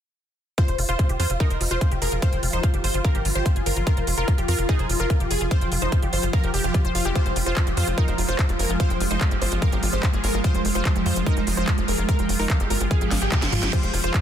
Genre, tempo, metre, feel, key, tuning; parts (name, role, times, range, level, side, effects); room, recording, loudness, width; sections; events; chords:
psychedelic trance; 146 BPM; 4/4; straight; F minor; A4 = 440 Hz
supersaw stab; melody; 0.6-14.2 s; F4 to C5; -29 LUFS; equal; phaser, sidechain pumping, digital delay
swarming drone; sustained chords; 1.8-14.2 s; F3 to F4; -29 LUFS; right 1 dB; built-in reverb, sidechain pumping
wide unison pluck; riff; 0.6-14.2 s; Eb4 to G5; -31 LUFS; moving between left 3 dB and right 4 dB; auto-pan, sidechain pumping, digital delay
electronic kick drum; drums; 0.6-14.2 s; -21 LUFS; equal; studio reverb
techno drum kit; drums; 0.6-14.2 s; crash cymbal, handclaps, hi-hat, rim click, snare drum, toms; -29 LUFS; right 1 dB; studio reverb
tight sequencer bass; bass; 0.7-14.1 s; F1 to F2; -25 LUFS; equal
zap and reverse cymbal; sound effects; 7.1-7.2, 13.1-13.7 s; -32 LUFS; right 4 dB
light reverb; dense, heavily limited modern master; -20 LUFS; side -10 dB against mid
0.6-14.2 A section
reverse cymbal 13.1-13.7; drum fill 13.1-13.7
0.6 F5